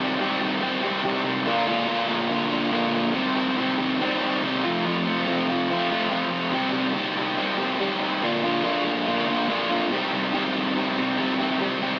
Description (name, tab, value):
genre	rock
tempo	142 BPM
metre	4/4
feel	straight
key	C dorian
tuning	A4 = 439 Hz
part	sludgy distorted guitar	solo	0.0-12.0 s	F2 to G4	-24 LUFS	equal	overdrive
room	moderate studio reverb, RT60 0.6 s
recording	rough rehearsal-room recording, tube saturation, AM radio sound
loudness	-24 LUFS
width	mono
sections	0.0-12.0 A section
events	none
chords	0.0 Cm; 1.5 Bb; 3.1 Cm; 4.6 F; 6.5 Cm; 8.2 Bb; 9.9 Cm